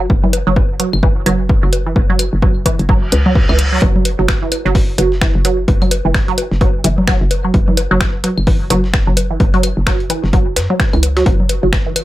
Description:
minimal techno; 129 BPM; 4/4; swing 59% on 16ths; A4 = 441 Hz
resonant blip pluck; riff; 0.0-11.9 s; E3 to F#3; -19 LUFS; right 3 dB; phaser, sidechain pumping, dub echo
hollow knocking FM bass; bass; 0.0-11.9 s; F#1 to F#2; -17 LUFS; equal; tube saturation, sidechain pumping
electronic kick drum; drums; 0.1-11.8 s; -14 LUFS; equal
bongos, congas and claves; percussion; 0.1-12.0 s; -22 LUFS; left 3 dB; dub echo
punchy analog drum machine; drums; 0.3-12.0 s; finger snaps, hi-hat; -19 LUFS; right 1 dB
reverse cymbal; sound effects; 3.0-3.8 s; -21 LUFS; right 1 dB
dusty soul sampler-style drum kit; drums; 3.8-12.0 s; hi-hat, snare drum; -30 LUFS; left 1 dB; sidechain pumping on hats, high-pass filter on hats, high-pass filter on snare
light reverb; -12 LUFS; side -15 dB against mid
0.0-12.0 A section
reverse cymbal 3.0-3.8
0.0 F#5

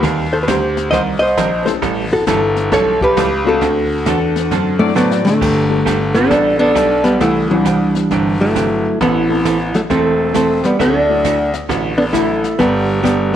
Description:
country, western swing; 134 BPM; 4/4; swing 65% on 8ths; G major; A4 = 440 Hz
hollow-body jazz guitar; melody; 0.0-13.3 s; D3 to Eb5; -15 LUFS; left 1 dB; slapback echo
breathy clarinet; second line; 0.0-13.4 s; D4 to C5; -22 LUFS; right 8 dB; slapback echo
honky-tonk upright piano; accompaniment; 0.0-12.4 s; E3 to A4; -24 LUFS; left 12 dB
vintage hollow-body jazz guitar; accompaniment; 0.0-13.2 s; C3 to Bb4; -23 LUFS; right 11 dB
bright concert grand piano; bass; 0.0-13.3 s; E1 to A2; -20 LUFS; left 1 dB
jazz brush drum kit; drums; 0.0-13.4 s; brushed snare drum, crash cymbal, hi-hat, kick drum, snare drum; -27 LUFS; left 6 dB
clean lap steel guitar; second line; 4.1-5.3 s; A4 to D5; -23 LUFS; left 11 dB
light reverb; 1960s-style stereo with parts hard left and right; -12 LUFS; side -10 dB against mid
0.0-5.4 A section; 5.4-13.4 B section
drum fill 5.0-5.4
0.0 Eb6; 1.8 A7; 3.6 D7; 5.4 Gsus2; 7.2 Cadd9; 9.0 Am; 10.8 Dadd9; 12.6 G

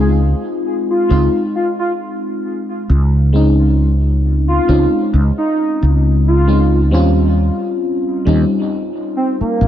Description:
vaporwave; 67 BPM; 4/4; swing 54% on 16ths; A4 = 440 Hz
warm velvety synth lead; melody; 0.0-9.7 s; Bb3 to Ab4; -20 LUFS; right 1 dB; chorus, tape echo
mellow FM electric piano; accompaniment; 0.0-9.7 s; G3 to F4; -18 LUFS; left 1 dB; wide subtle chorus, tape echo
mellow fretless electric bass; bass; 0.0-9.7 s; Bb1 to Eb2; -12 LUFS; equal; lush chorus
light reverb; dark, warm production; -12 LUFS; side -11 dB against mid
0.0-9.7 A section
0.0 Dbmaj9; 6.9 Eb13

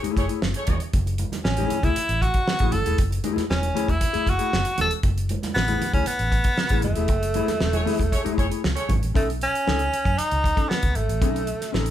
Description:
funk; 117 BPM; 4/4; straight; F# dorian; A4 = 440 Hz
mellow electric guitar; accompaniment; 0.0-11.9 s; A3 to A4; -28 LUFS; left 8 dB
vintage muted fingered electric bass; bass; 0.0-11.9 s; E1 to F#2; -26 LUFS; equal
damped 70s drum kit; drums; 0.0-11.9 s; hi-hat, kick drum, snare drum; -25 LUFS; equal
congas; percussion; 0.0-9.0 s; -33 LUFS; right 4 dB
warm horn section; second line; 0.2-0.8, 7.7-8.9 s; A3 to C#5; -31 LUFS; right 1 dB
breathy tenor saxophone; melody; 1.4-11.9 s; A3 to A4; -25 LUFS; right 1 dB
light reverb; band playing live in one room; -20 LUFS; side -11 dB against mid
0.0-9.2 A section; 9.2-11.9 B section
band accent 0.0-0.9, 7.1-9.2
0.0 F#m9; 9.2 B9

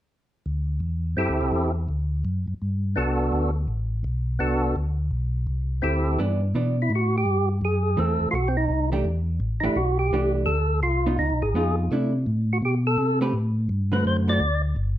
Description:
soul jazz organ trio; 168 BPM; 4/4; swing 63% on 8ths; G major; A4 = 440 Hz
mellow tonewheel organ; bass; 0.5-15.0 s; G1 to C3; -24 LUFS; equal; chorus vibrato, slow rotary speaker
percussive tonewheel organ; melody; 1.2-14.6 s; B3 to D5; -25 LUFS; right 1 dB; slow rotary speaker, overdrive
vintage hollow-body jazz guitar; accompaniment; 6.2-14.4 s; D3 to B4; -27 LUFS; right 2 dB
light reverb; dark, warm production; -22 LUFS; side -12 dB against mid
0.5-6.2 A section; 6.2-15.0 B section
0.5 D7sus4; 1.9 Gmaj7; 4.8 D9sus4; 6.2 G6; 7.6 F#m7b5; 8.3 B7b9; 9.1 Em7; 10.5 Dm7; 11.2 C#9; 11.9 C69; 13.3 Am7; 14.1 D7

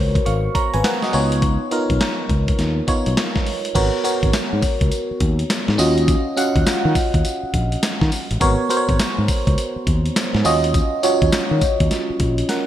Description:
R&B, new jack swing; 103 BPM; 4/4; swing 64% on 16ths; G# dorian; A4 = 441 Hz
FM electric piano; accompaniment; 0.0-12.7 s; B3 to C#6; -20 LUFS; right 1 dB; chorus, phaser
fretless electric bass; bass; 0.0-12.4 s; G#1 to D#3; -20 LUFS; equal
dusty soul sampler-style drum kit; drums; 0.2-12.7 s; crash cymbal, handclaps, hi-hat, kick drum, snare drum, tambourine; -21 LUFS; equal; gated reverb
light reverb, digital ambience; bright 1980s-style digital production; -16 LUFS; side -12 dB against mid
0.0-3.8 A section; 3.8-12.7 B section
drum fill 12.5
0.0 G#m11; 1.1 C#9; 3.8 G#m11; 5.8 D#m9; 8.4 G#m11; 10.5 D#m9

